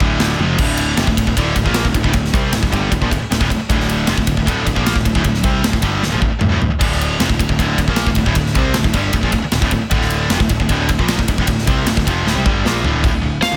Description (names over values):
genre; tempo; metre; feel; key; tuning
heavy metal; 154 BPM; 4/4; straight; D minor; A4 = 442 Hz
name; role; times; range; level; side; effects
crunchy overdriven guitar; riff; 0.0-13.0 s; D2 to C4; -28 LUFS; equal; none
high-gain distorted guitar; riff; 0.0-13.6 s; D2 to C4; -25 LUFS; equal; distortion
tight distorted guitar; riff; 0.0-13.6 s; D2 to C4; -24 LUFS; equal; distortion
overdriven picked electric bass; bass; 0.0-13.6 s; D1 to C2; -23 LUFS; equal; none
big rock drum kit; drums; 0.0-13.5 s; crash cymbal, kick drum, ride cymbal, snare drum, toms; -20 LUFS; equal; none
high-gain lead guitar; melody; 13.4-13.6 s; F5; -18 LUFS; equal; distortion
room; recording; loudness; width
small room ambience; none; -16 LUFS; mono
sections
0.6-13.0 A section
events
drum fill 0.4, 6.0-6.8, 12.3-13.0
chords
0.0 Dm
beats
0.20 | 0.59 0.98 1.37 1.76 | 2.15 2.54 2.92 3.31 | 3.70 4.09 4.48 4.87 | 5.26 5.65 6.04 6.43 | 6.82 7.21 7.59 7.98 | 8.37 8.76 9.15 9.54 | 9.93 10.32 10.71 11.10 | 11.48 11.87 12.26 12.65 | 13.04 13.43